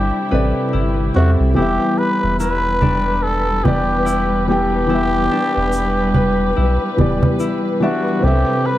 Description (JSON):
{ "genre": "trip hop", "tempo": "72 BPM", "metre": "4/4", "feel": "swing 57% on 16ths", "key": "E minor", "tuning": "A4 = 441 Hz", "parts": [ { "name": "trumpet with cup mute", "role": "melody", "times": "0.0-8.8 s", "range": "F#4 to B4", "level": "-20 LUFS", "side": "equal", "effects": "dub echo" }, { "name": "felt-muted upright piano", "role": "accompaniment", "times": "0.0-8.8 s", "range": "C3 to G5", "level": "-21 LUFS", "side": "left 1 dB", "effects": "harmonic tremolo, vintage 12-bit sampler grit, tape echo" }, { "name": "dark studio string section", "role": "sustained chords", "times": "0.0-8.8 s", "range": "G3 to B4", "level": "-22 LUFS", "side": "equal", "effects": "vintage 12-bit sampler grit" }, { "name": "concert harp", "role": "arpeggios", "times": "0.0-8.8 s", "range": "D4 to B4", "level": "-27 LUFS", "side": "left 5 dB", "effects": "tape echo" }, { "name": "soft dub sub bass", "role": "bass", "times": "0.0-8.4 s", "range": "D1 to E2", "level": "-20 LUFS", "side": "equal", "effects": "tube saturation" }, { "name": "tube shaker and congas", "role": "percussion", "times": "2.4-7.6 s", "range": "none", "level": "-18 LUFS", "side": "right 1 dB", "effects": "none" } ], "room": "moderate spring reverb, RT60 1.1 s, studio ambience", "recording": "vinyl crackle", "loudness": "-14 LUFS", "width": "side -14 dB against mid", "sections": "0.0-8.8 A section", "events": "none", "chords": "0.0 C6; 1.6 Em; 8.2 C6", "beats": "0.73 | 1.57 2.40 3.23 4.07 | 4.90 5.73 6.57 7.40 | 8.23" }